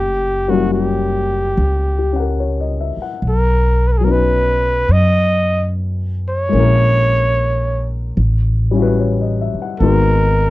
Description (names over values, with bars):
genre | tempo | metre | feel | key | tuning
jazz ballad | 73 BPM | 4/4 | swing 69% on 8ths | unclear | A4 = 438 Hz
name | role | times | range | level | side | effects
warm trumpet | melody | 0.0-10.5 s | F#4 to D#5 | -18 LUFS | right 1 dB | none
upright bass | bass | 0.0-10.5 s | F#1 to F#2 | -16 LUFS | equal | none
warm upright piano | accompaniment | 0.5-10.5 s | F#3 to F#5 | -19 LUFS | left 5 dB | none
room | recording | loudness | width
little or no reverb | dry, close 1970s-style studio recording | -14 LUFS | side -17 dB against mid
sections
0.0-10.5 A section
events
none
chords
0.0 F#7b9; 3.2 Badd9; 6.5 A#m7b5; 8.2 A13; 9.8 G#m9